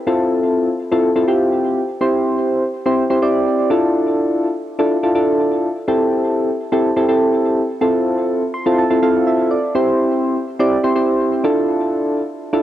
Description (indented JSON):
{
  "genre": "pop",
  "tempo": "124 BPM",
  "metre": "4/4",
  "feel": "straight",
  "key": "unclear",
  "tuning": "A4 = 440 Hz",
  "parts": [
    { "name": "soft electric-piano-like synth keys", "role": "solo", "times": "0.1-12.6 s", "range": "C4 to C6", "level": "-15 LUFS", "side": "equal", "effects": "chorus, cassette tape, tape echo" }
  ],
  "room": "moderate booth ambience, RT60 0.2 s",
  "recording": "home recording on cassette",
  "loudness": "-15 LUFS",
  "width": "side -12 dB against mid",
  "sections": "0.0-12.6 A section",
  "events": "synth keys fill 8.3-9.7",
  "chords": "0.1 Fmaj7; 2.0 C; 3.7 Dmadd9; 5.9 Am7; 7.8 Fmaj7; 9.7 C; 11.4 Dmadd9"
}